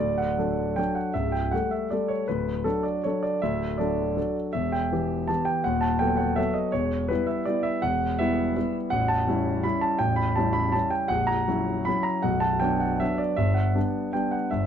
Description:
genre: classical, piano waltz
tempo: 151-172 BPM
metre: 3/4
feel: rubato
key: D major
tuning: A4 = 441 Hz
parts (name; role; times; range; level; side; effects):
- clear grand piano; solo; 0.0-14.7 s; A0 to B5; -23 LUFS; equal; none
room: light reverb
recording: dark, warm production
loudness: -23 LUFS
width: side -8 dB against mid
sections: 0.0-14.7 A section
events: none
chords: 0.0 D; 1.2 A7/C#; 2.3 D; 4.5 Em; 5.7 B7/D#; 6.7 Em; 8.9 A7; 11.1 F#7/A#; 12.2 Bm; 13.4 G

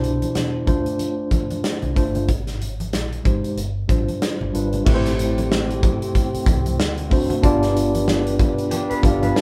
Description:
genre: lush 1970s-style soul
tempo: 93 BPM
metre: 4/4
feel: swing 58% on 16ths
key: unclear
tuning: A4 = 436 Hz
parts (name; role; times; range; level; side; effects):
- mellow tine electric piano; accompaniment; 0.0-9.4 s; B2 to F5; -24 LUFS; equal; none
- vintage muted fingered electric bass; bass; 0.0-9.3 s; G1 to E2; -28 LUFS; equal; none
- modern studio drum kit; drums; 0.0-9.4 s; crash cymbal, hi-hat, kick drum, snare drum; -24 LUFS; equal; none
- congas; percussion; 0.0-9.3 s; none; -34 LUFS; equal; none
- clear French horn section; sustained chords; 4.9-9.4 s; D3 to B4; -34 LUFS; equal; none
- electric guitar through a small old amp; riff; 8.7-9.4 s; D4 to D5; -28 LUFS; equal; spring reverb
room: light reverb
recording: band playing live in one room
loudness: -20 LUFS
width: mono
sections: 0.0-4.9 A section; 4.9-9.4 B section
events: none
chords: 0.0 Cmaj9; 0.7 Dm7; 2.3 Abmaj7; 3.6 G7sus4; 4.9 Am7; 6.8 D7; 7.4 G7

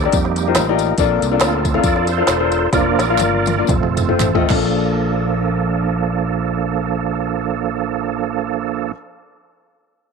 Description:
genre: uptempo gospel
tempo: 107-142 BPM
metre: 4/4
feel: swing 56% on 8ths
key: Bb major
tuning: A4 = 437 Hz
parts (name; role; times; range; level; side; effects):
- bright tonewheel organ; sustained chords; 0.0-8.9 s; F3 to D5; -20 LUFS; right 13 dB; fast rotary speaker, chorus vibrato
- fingered electric bass; bass; 0.0-8.9 s; E1 to F2; -23 LUFS; right 1 dB; none
- organic electronic drum kit; drums; 0.0-4.6 s; crash cymbal, hi-hat, kick drum, snare drum, toms; -20 LUFS; equal; none
- clear upright piano; accompaniment; 0.1-8.9 s; Bb1 to F5; -20 LUFS; left 14 dB; none
- tambourine and handclaps; percussion; 0.1-5.0 s; none; -27 LUFS; right 4 dB; none
room: light reverb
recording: 1960s-style stereo with parts hard left and right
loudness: -15 LUFS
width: side -5 dB against mid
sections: 0.0-4.7 A section; 4.7-9.2 B section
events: tonewheel organ solo 0.0-4.7; slowing down 1.0-4.7; drum fill 2.7-4.7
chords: 0.1 F9sus4; 1.0 Bbmaj7; 2.7 Bb/F; 3.7 F; 4.5 Bbmaj7

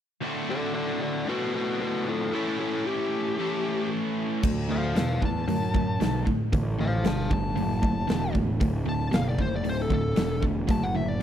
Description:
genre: blues rock power trio and southern rock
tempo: 115 BPM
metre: 4/4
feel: straight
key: D major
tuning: A4 = 440 Hz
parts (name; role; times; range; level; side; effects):
- cranked stack guitar; riff; 0.2-11.2 s; D2 to A4; -28 LUFS; equal; overdrive
- fuzz lead guitar; melody; 0.5-11.2 s; E4 to A5; -30 LUFS; left 3 dB; distortion
- fuzz picked electric bass; bass; 4.4-11.2 s; D1 to F#2; -29 LUFS; equal; overdrive
- huge arena drum kit; drums; 4.4-10.8 s; crash cymbal, hi-hat, kick drum, snare drum; -28 LUFS; equal; none
room: little or no reverb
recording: none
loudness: -24 LUFS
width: side -10 dB against mid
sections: 0.2-4.4 A section; 4.4-11.2 B section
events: none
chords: 0.2 D7; 2.3 A7; 4.4 D

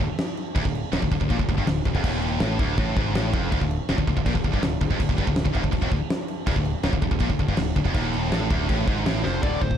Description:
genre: heavy metal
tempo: 162 BPM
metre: 4/4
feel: straight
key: D phrygian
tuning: A4 = 441 Hz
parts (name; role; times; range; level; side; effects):
- heavy high-gain guitar; riff; 0.0-9.8 s; D2 to D3; -29 LUFS; right 12 dB; distortion
- scooped high-gain guitar; riff; 0.0-9.8 s; D2 to D3; -28 LUFS; left 9 dB; distortion
- growling fingered electric bass; bass; 0.0-9.8 s; D1 to Bb1; -28 LUFS; equal; overdrive
- big rock drum kit; drums; 0.0-9.8 s; crash cymbal, kick drum, ride cymbal, snare drum; -25 LUFS; equal; none
- high-gain lead guitar; melody; 9.2-9.8 s; C5 to D5; -29 LUFS; left 3 dB; distortion
room: small room ambience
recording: dark, warm production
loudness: -21 LUFS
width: side -9 dB against mid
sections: 0.0-9.4 A section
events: drum fill 9.2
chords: 0.0 Dm

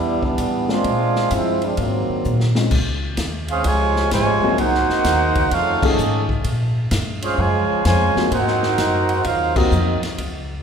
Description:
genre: jazz, big band swing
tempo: 129 BPM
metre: 4/4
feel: swing 66% on 8ths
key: unclear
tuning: A4 = 442 Hz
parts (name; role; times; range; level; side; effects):
- warm trombone section; second line; 0.0-10.0 s; B#2 to Gb4; -22 LUFS; right 1 dB; none
- upright bass; bass; 0.0-10.6 s; G#1 to Bb2; -22 LUFS; left 1 dB; none
- vintage drum kit; drums; 0.2-10.3 s; crash cymbal, hi-hat, kick drum, ride cymbal, snare drum; -26 LUFS; left 1 dB; none
- warm baby grand piano; accompaniment; 0.7-9.7 s; F3 to G#4; -25 LUFS; left 4 dB; none
- dark trumpet section; melody; 3.5-10.0 s; C4 to G#5; -20 LUFS; right 3 dB; none
room: moderate concert hall reverb, RT60 1.9 s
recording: recorded in a church or concert hall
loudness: -16 LUFS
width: side -7 dB against mid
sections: 0.0-2.7 A section; 2.7-10.6 B section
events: trombone section solo 0.0-2.7; drum fill 2.3-2.7; band accent 5.8, 9.5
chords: 0.0 Cmaj9; 0.9 Bb9; 1.8 G#13; 4.6 Cm7b5; 5.5 F7alt; 6.5 Bbm9; 8.3 Ab13

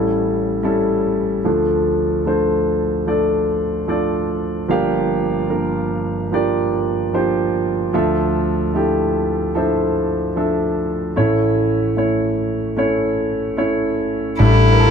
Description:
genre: acoustic folk-pop ballad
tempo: 74 BPM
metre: 4/4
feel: straight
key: D minor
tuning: A4 = 441 Hz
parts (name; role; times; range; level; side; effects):
- dark concert grand piano; melody; 0.0-14.9 s; G1 to F5; -16 LUFS; equal; none
- clear cello; second line; 14.4-14.9 s; E4; -17 LUFS; left 1 dB; none
- woody fretless electric bass; bass; 14.4-14.9 s; A1; -12 LUFS; left 1 dB; none
room: little or no reverb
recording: close, detailed microphones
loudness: -16 LUFS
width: side -7 dB against mid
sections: 0.0-14.4 A section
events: none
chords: 0.0 A7; 1.5 Dm; 4.7 Gm7; 7.9 Dmadd9; 11.2 A; 14.4 A7sus4

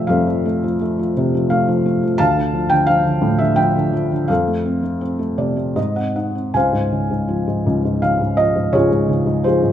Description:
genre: classical, lyrical solo piano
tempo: 76-88 BPM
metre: 3/4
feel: rubato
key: F major, Db major from 6.5 s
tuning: A4 = 440 Hz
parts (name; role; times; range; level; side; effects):
- felt-muted upright piano; solo; 0.0-9.7 s; Db2 to A5; -15 LUFS; equal; none
room: moderate recital hall reverb, RT60 1.6 s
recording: minimal, uncompressed stereo recording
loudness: -16 LUFS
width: side -10 dB against mid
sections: 0.0-6.5 A section; 6.5-9.7 B section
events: felt piano fill 5.0-6.5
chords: 0.0 Fadd9; 2.2 Dm; 4.3 F; 5.8 Ab7; 6.5 Dbmaj7

